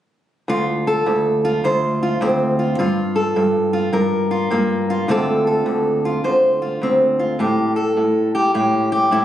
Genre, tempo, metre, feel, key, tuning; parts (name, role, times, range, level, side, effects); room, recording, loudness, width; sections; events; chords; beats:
blues; 104 BPM; 4/4; swing 65% on 8ths; D minor; A4 = 440 Hz
fingerpicked steel-string acoustic guitar; accompaniment; 0.5-9.2 s; D2 to C5; -16 LUFS; equal
moderate studio reverb, RT60 0.5 s; recorded on a phone in the room, club reverb, compression; -16 LUFS; side -12 dB against mid
0.5-9.2 A section
0.5 Dm7; 2.8 Gm9; 5.1 Dm7; 7.4 A5
| 0.48 1.06 1.63 2.21 | 2.78 3.36 3.93 4.51 | 5.09 5.66 6.24 6.81 | 7.39 7.96 8.54 9.11